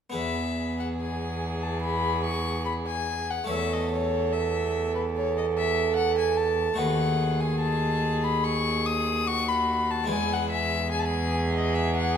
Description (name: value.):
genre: classical, baroque-style sonata movement with continuo.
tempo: 73 BPM.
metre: 4/4.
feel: straight.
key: E major.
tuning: A4 = 440 Hz.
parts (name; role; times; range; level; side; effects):
harpsichord; accompaniment; 0.1-12.2 s; D#2 to C#5; -32 LUFS; left 1 dB; none.
warm violin; melody; 0.2-12.2 s; B4 to D#6; -29 LUFS; left 6 dB; none.
rich violin; second line; 0.2-12.2 s; F#4 to A4; -30 LUFS; right 7 dB; none.
rich cello; bass; 0.2-12.2 s; D#2 to E2; -29 LUFS; right 1 dB; none.
room: wet recital hall reverb, RT60 1.5 s.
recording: none.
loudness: -24 LUFS.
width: side -8 dB against mid.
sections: 0.2-12.2 A section.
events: none.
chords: 0.2 E; 3.5 A/E; 6.8 B7/D#; 10.1 E.